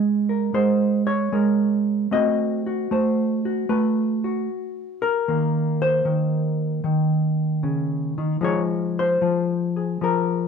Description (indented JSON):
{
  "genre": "solo jazz",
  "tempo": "76 BPM",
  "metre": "4/4",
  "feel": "swing 69% on 8ths",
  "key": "unclear",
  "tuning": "A4 = 440 Hz",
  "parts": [
    { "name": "hollow-body jazz guitar", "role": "solo", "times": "0.0-10.5 s", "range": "Db3 to Eb5", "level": "-20 LUFS", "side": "equal", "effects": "none" }
  ],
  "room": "moderate large studio reverb, RT60 1.1 s",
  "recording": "dark, warm production",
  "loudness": "-20 LUFS",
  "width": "side -6 dB against mid",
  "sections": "0.0-10.5 A section",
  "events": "none",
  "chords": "0.0 Abadd9; 2.1 Adim7; 5.3 Eb5; 8.4 Fm7",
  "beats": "0.52 1.31 | 2.10 2.89 3.68 4.47 | 5.26 6.05 6.84 7.63 | 8.43 9.22 10.01"
}